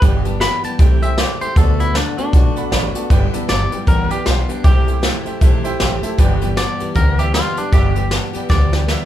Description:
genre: rockabilly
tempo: 156 BPM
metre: 4/4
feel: swing 60% on 8ths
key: G major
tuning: A4 = 440 Hz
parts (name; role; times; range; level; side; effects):
- twangy electric guitar; melody; 0.0-9.1 s; D4 to B5; -22 LUFS; left 1 dB; warbly pitch drift
- bright upright piano; accompaniment; 0.0-9.0 s; B4 to B5; -28 LUFS; right 4 dB; none
- picked steel-string acoustic guitar; accompaniment; 0.0-9.1 s; G2 to G4; -24 LUFS; left 2 dB; none
- upright bass; bass; 0.0-8.9 s; G1 to D2; -19 LUFS; equal; none
- jazz brush drum kit; drums; 0.0-9.0 s; hi-hat, kick drum, snare drum; -16 LUFS; equal; none
room: light reverb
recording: band playing live in one room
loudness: -13 LUFS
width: side -12 dB against mid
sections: 0.0-3.1 A section; 3.1-9.1 A section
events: drum fill 8.5-9.1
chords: 0.0 G6; 0.8 C6; 1.6 D6; 3.1 G6; 4.6 C6; 6.2 G6

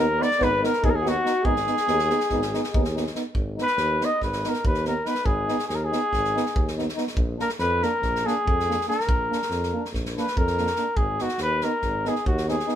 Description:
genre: balkan folk, Balkan brass band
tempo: 283 BPM (eighths)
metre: 9/8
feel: straight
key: Ab dorian sharp4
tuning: A4 = 440 Hz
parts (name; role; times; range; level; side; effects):
- mellow trumpet; melody; 0.0-12.8 s; Gb4 to Eb5; -24 LUFS; left 1 dB; none
- mellow alto saxophone; second line; 0.0-3.1 s; Gb4 to D5; -29 LUFS; left 3 dB; none
- clear trombone; accompaniment; 0.0-12.7 s; D4 to Eb4; -32 LUFS; left 4 dB; none
- warm euphonium; accompaniment; 0.0-12.8 s; Bb3 to Cb4; -31 LUFS; right 5 dB; none
- warm tuba; bass; 0.0-12.6 s; Ab1 to F2; -29 LUFS; equal; none
- natural country drum kit; percussion; 0.2-12.7 s; kick drum, snare drum; -28 LUFS; equal; none
room: light reverb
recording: band playing live in one room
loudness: -22 LUFS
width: side -10 dB against mid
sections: 0.0-3.4 A section; 3.4-12.8 B section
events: trumpet solo 3.4-12.8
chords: 0.0 Abm; 7.2 Bb; 11.0 Abm

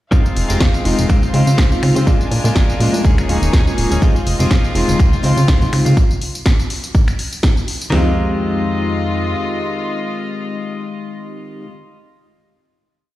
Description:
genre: filtered disco house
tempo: 123 BPM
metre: 4/4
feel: swing 54% on 16ths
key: F minor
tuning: A4 = 440 Hz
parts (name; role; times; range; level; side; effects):
- tine electric piano; accompaniment; 0.1-11.7 s; Ab3 to G4; -22 LUFS; left 1 dB; medium tremolo, phaser, sidechain pumping
- rich chamber violin section; sustained chords; 0.1-11.6 s; D4 to C6; -26 LUFS; left 1 dB; vintage 12-bit sampler grit, sidechain pumping
- direct-recorded clean electric guitar; riff; 0.1-11.7 s; Eb3 to Ab4; -24 LUFS; left 2 dB; sidechain pumping
- plucky analog bass; bass; 0.1-9.3 s; Eb1 to Db3; -17 LUFS; equal; sidechain pumping
- house drum kit; drums; 0.1-8.0 s; kick drum, snare drum, toms; -14 LUFS; equal; none
- punchy analog drum machine; drums; 0.1-7.9 s; finger snaps, hi-hat, snare drum, tambourine; -24 LUFS; equal; sidechain pumping on perc, sidechain pumping on hats
- maracas and congas; percussion; 4.0-6.0 s; none; -26 LUFS; right 1 dB; none
room: digital ambience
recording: played on a big sound system in a bare room, stone room reverb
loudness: -13 LUFS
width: side -15 dB against mid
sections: 0.1-7.9 drop; 7.9-11.8 final chord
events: drop 0.1-7.9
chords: 0.1 Fm7; 1.1 Dbmaj7; 2.1 Bb7; 3.0 Eb7sus4; 4.0 Fm7; 5.0 Dbmaj7; 6.0 N.C.; 7.9 Fm7

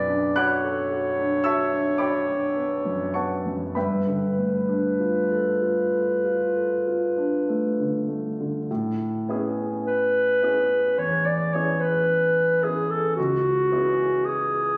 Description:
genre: classical, impressionist duo for clarinet and grand piano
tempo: 47-57 BPM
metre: 4/4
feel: rubato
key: A mixolydian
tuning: A4 = 440 Hz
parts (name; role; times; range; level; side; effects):
- warm clarinet; melody; 0.0-14.8 s; F#4 to D5; -25 LUFS; equal; none
- clear concert grand piano; accompaniment; 0.0-14.8 s; B1 to F#6; -28 LUFS; equal; none
room: wet recital hall reverb, RT60 1.6 s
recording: recorded on a phone in the room, club reverb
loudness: -24 LUFS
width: mono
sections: 0.0-8.7 A section; 8.7-14.8 B section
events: none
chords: 0.0 Bm7; 3.8 G9; 8.7 Amaj9; 13.2 C#m7

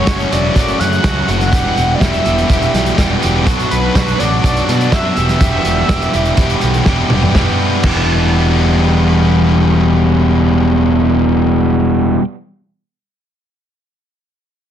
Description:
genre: indie rock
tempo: 124 BPM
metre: 4/4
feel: straight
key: E dorian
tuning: A4 = 440 Hz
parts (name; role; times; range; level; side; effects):
- overdriven synth lead; melody; 0.0-6.8 s; B4 to F#5; -19 LUFS; equal; slapback echo
- cranked stack guitar; riff; 0.0-12.2 s; E2 to G4; -16 LUFS; left 7 dB; overdrive
- overdriven electric guitar; riff; 0.0-12.2 s; E2 to G4; -18 LUFS; right 13 dB; wide subtle chorus, slapback echo
- fuzz picked electric bass; bass; 0.1-12.2 s; E1 to B2; -17 LUFS; equal; overdrive
- vintage drum kit; drums; 0.1-8.0 s; crash cymbal, hi-hat, kick drum, snare drum, toms; -17 LUFS; equal; none
room: light reverb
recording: dense, heavily limited modern master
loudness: -11 LUFS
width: side -10 dB against mid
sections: 0.0-7.4 A section; 7.4-11.2 B section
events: drum fill 6.9-7.4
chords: 0.0 F#m; 1.5 Em; 3.5 Bm; 5.2 Em

